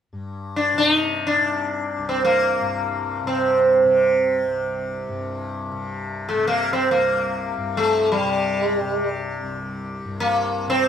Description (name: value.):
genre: indian classical, Hindustani.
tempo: free time.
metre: none.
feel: none.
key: C raga bhimpalasi.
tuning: A4 = 438 Hz.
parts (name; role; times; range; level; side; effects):
tanpura; drone; 0.1-10.9 s; C2 to C3; -28 LUFS; left 2 dB; none.
sitar; melody; 0.6-10.9 s; G3 to Eb4; -19 LUFS; equal; plate reverb.
room: moderate studio reverb, RT60 0.6 s.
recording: none.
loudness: -19 LUFS.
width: side -8 dB against mid.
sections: 0.1-10.9 A section.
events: none.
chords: none.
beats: free time.